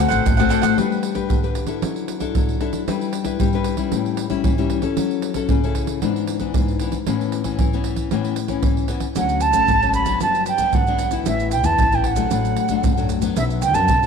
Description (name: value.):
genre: samba and choro.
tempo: 114 BPM.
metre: 4/4.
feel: straight.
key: D major.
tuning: A4 = 440 Hz.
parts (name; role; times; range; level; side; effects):
concert flute; melody; 0.0-0.3, 9.2-14.1 s; E5 to B5; -20 LUFS; right 4 dB; none.
nylon-string guitar; accompaniment; 0.0-14.1 s; F#2 to B4; -22 LUFS; left 9 dB; none.
upright bass; bass; 0.0-0.7, 9.2-14.1 s; G1 to F#2; -24 LUFS; equal; none.
cavaquinho; accompaniment; 0.1-0.8 s; D4 to F#5; -23 LUFS; right 8 dB; none.
maracas, surdo, pandeiro and tamborim; percussion; 0.1-14.1 s; none; -22 LUFS; right 2 dB; none.
room: moderate echo chamber reverb, RT60 2.1 s.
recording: 1960s-style stereo with parts hard left and right.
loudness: -18 LUFS.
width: side -6 dB against mid.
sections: 0.8-9.2 A section; 9.2-14.1 B section.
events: none.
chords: 0.0 D7; 0.8 G; 1.8 Dadd9/F#; 2.9 Em7/G; 3.9 A7; 5.0 F#m7; 6.0 E7/G#; 7.1 Aadd9; 9.2 Dmaj7; 10.2 Gmaj7; 11.3 Asus2; 12.3 D/A; 13.4 Bm.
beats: 0.25 | 0.78 1.30 1.82 2.35 | 2.87 3.40 3.92 4.45 | 4.97 5.50 6.02 6.54 | 7.07 7.59 8.12 8.64 | 9.17 9.69 10.22 10.74 | 11.27 11.79 12.32 12.84 | 13.37 13.89.